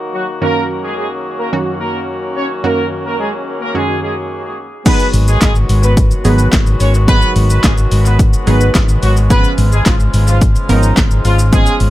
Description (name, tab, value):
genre	dance-pop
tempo	108 BPM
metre	4/4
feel	straight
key	G# dorian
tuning	A4 = 439 Hz
part	warm woodwind section	sustained chords	0.0-11.9 s	F#2 to F#4	-22 LUFS	left 2 dB	sidechain pumping, low-pass filter
part	mellow horn section	melody	0.1-11.7 s	D#3 to C#5	-19 LUFS	right 1 dB	sidechain pumping, low-pass filter, analog delay
part	analog pluck	accompaniment	0.4-11.9 s	F#2 to A#4	-20 LUFS	right 3 dB	chorus, sidechain pumping, low-pass filter
part	punchy analog drum machine	drums	4.9-11.9 s	crash cymbal, handclaps, hi-hat, kick drum, shaker, snare drum	-13 LUFS	equal	none
part	vintage muted fingered electric bass	bass	5.1-11.9 s	G#1	-12 LUFS	equal	sidechain pumping
room	light reverb, digital ambience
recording	echo-heavy mix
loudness	-11 LUFS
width	side -15 dB against mid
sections	0.0-4.9 A section; 4.9-11.9 B section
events	drop 4.9-11.9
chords	0.4 D#m7/F#; 4.9 G#m7; 9.3 C#7/G#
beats	| 0.41 0.97 1.53 2.08 | 2.64 3.19 3.75 4.30 | 4.86 5.42 5.97 6.53 | 7.08 7.64 8.19 8.75 | 9.30 9.86 10.41 10.97 | 11.53